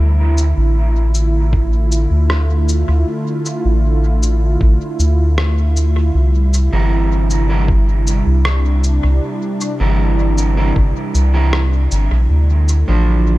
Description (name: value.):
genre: ambient dub.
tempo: 78 BPM.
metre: 4/4.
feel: straight.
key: D minor.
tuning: A4 = 444 Hz.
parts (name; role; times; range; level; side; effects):
warm analog pad; sustained chords; 0.0-13.4 s; C3 to F4; -21 LUFS; right 1 dB; chorus.
soft dub sub bass; bass; 0.0-13.4 s; G1 to D2; -13 LUFS; equal; none.
electronic shaker and rim click; drums; 0.4-12.8 s; none; -24 LUFS; left 1 dB; dub echo.
electronic kick drum; drums; 1.5-10.9 s; none; -16 LUFS; equal; none.
electric guitar at the edge of break-up; stabs; 6.7-13.4 s; E3 to C5; -23 LUFS; right 3 dB; dub echo.
room: digital ambience.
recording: none.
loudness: -13 LUFS.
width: side -18 dB against mid.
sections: 0.0-13.4 A section.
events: none.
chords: 0.0 Dm; 6.1 C7; 12.3 Dm7.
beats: 0.76 1.53 2.30 | 3.07 3.84 4.61 5.38 | 6.15 6.92 7.68 8.45 | 9.22 9.99 10.76 11.53 | 12.30 13.07.